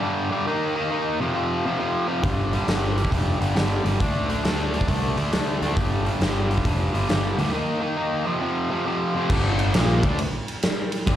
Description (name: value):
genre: blues rock power trio and southern rock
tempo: 136 BPM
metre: 4/4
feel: swing 66% on 8ths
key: unclear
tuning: A4 = 438 Hz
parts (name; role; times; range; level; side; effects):
- distorted electric guitar; riff; 0.0-11.2 s; F2 to Eb4; -24 LUFS; equal; overdrive
- fuzz picked electric bass; bass; 2.2-11.2 s; F1 to D2; -24 LUFS; equal; overdrive
- huge arena drum kit; drums; 2.2-11.2 s; crash cymbal, hi-hat, kick drum, ride cymbal, snare drum; -25 LUFS; equal; none
room: light reverb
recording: live gig heard through the venue's PA, club reverb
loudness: -21 LUFS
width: side -11 dB against mid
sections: 0.0-9.3 A section; 9.3-11.2 B section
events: break 7.5-9.3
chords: 0.5 Eb5; 1.1 F5; 2.2 G5; 4.0 D5; 5.8 G5; 7.5 Eb5; 8.2 F5; 9.3 G5